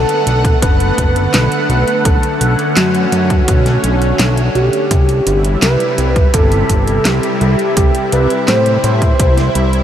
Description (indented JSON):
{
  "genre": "synthwave",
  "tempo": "84 BPM",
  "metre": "4/4",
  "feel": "straight",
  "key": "B minor",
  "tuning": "A4 = 441 Hz",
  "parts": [
    { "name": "expressive synth lead", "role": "melody", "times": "0.0-9.8 s", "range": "F#4 to C5", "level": "-18 LUFS", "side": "equal", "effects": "analog chorus, diffuse ambient delay, shimmer reverb" },
    { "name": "soft synth bell", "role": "second line", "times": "0.0-9.8 s", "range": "F#4 to C5", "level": "-23 LUFS", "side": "right 1 dB", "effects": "none" },
    { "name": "lush unison pad", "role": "sustained chords", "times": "0.0-9.8 s", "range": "C3 to F#5", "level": "-17 LUFS", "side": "equal", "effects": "chorus, phaser, sidechain pumping, shimmer reverb" },
    { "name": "fat analog bass", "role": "bass", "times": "0.0-9.8 s", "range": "F#1 to A2", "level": "-15 LUFS", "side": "equal", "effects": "sidechain pumping" },
    { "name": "pop drum kit", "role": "drums", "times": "0.1-9.8 s", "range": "handclaps, hi-hat, snare drum", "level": "-21 LUFS", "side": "equal", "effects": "overdrive" },
    { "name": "electronic kick drum", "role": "drums", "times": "0.4-9.3 s", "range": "none", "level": "-13 LUFS", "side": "equal", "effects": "overdrive" }
  ],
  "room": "moderate huge ambient reverb, RT60 8.4 s",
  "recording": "dreamy mix soaked in reverb",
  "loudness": "-11 LUFS",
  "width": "side -10 dB against mid",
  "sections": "0.0-9.8 A section",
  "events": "none",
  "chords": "0.0 Bm7; 4.9 Cmaj7"
}